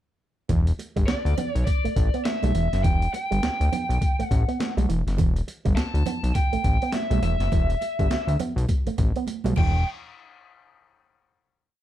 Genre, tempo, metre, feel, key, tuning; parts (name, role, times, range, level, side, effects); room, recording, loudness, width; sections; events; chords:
funk; 102 BPM; 4/4; swing 60% on 16ths; E minor; A4 = 440 Hz
electric guitar with an envelope filter; riff; 0.5-9.7 s; E3 to B3; -30 LUFS; right 5 dB; analog chorus
fat analog bass; bass; 0.5-9.8 s; E1 to D2; -23 LUFS; left 1 dB
breakbeat sampler-style drum kit; drums; 0.5-9.7 s; crash cymbal, hi-hat, kick drum, snare drum; -25 LUFS; equal
congas; percussion; 0.5-9.8 s; -33 LUFS; right 7 dB
lead guitar through a small cranked amp; melody; 1.1-9.8 s; D5 to A5; -28 LUFS; equal; overdrive
light reverb; dark, warm production; -21 LUFS; side -12 dB against mid
0.5-9.9 groove; 9.9-11.8 final hit
drum fill 9.3-9.9
0.5 Em7; 9.6 Em; 9.9 N.C.